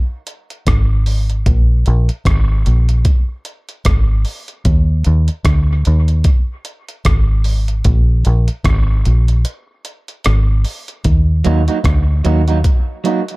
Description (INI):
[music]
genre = dub reggae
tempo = 75 BPM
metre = 4/4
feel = swing 58% on 16ths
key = unclear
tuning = A4 = 441 Hz
[part]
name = breakbeat sampler-style drum kit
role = drums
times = 0.3-13.4 s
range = hi-hat, kick drum, rim click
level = -16 LUFS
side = equal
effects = none
[part]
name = deep dub fingered electric bass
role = bass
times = 0.7-12.6 s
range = Ab1 to Eb2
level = -12 LUFS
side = equal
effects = none
[part]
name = electric guitar at the edge of break-up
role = accompaniment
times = 11.4-13.2 s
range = Gb3 to Gb4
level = -18 LUFS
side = right 5 dB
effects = dub echo
[sound]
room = digital ambience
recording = dark, warm production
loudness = -12 LUFS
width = side -23 dB against mid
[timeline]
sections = 0.0-13.4 A section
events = break 0.0-11.0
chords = 0.0 N.C.; 1.5 Absus2; 4.7 Ab5; 7.8 Absus2; 11.0 Ebm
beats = 0.66 | 1.46 2.26 3.06 3.86 | 4.66 5.45 6.25 7.05 | 7.85 8.65 9.45 10.25 | 11.05 11.85 12.65